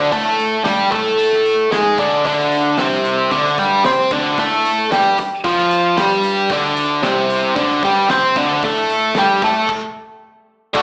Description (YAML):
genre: garage rock duo or trio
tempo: 113 BPM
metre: 4/4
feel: straight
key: unclear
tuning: A4 = 440 Hz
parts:
  - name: biting overdriven guitar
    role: riff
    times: 0.0-10.8 s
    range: C3 to C5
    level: -14 LUFS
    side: equal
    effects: slapback echo
  - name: fuzz picked electric bass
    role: bass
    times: 0.0-10.8 s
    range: C2 to C3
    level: -26 LUFS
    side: equal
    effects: overdrive
  - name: cloth-damped thuddy drum kit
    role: drums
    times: 0.1-10.8 s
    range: crash cymbal, hi-hat, kick drum, snare drum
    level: -28 LUFS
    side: equal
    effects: none
room: light reverb, studio ambience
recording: live gig heard through the venue's PA, club reverb, small speaker sound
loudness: -13 LUFS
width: side -32 dB against mid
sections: 0.0-10.7 A section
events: stop 9.7-10.7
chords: 0.0 D5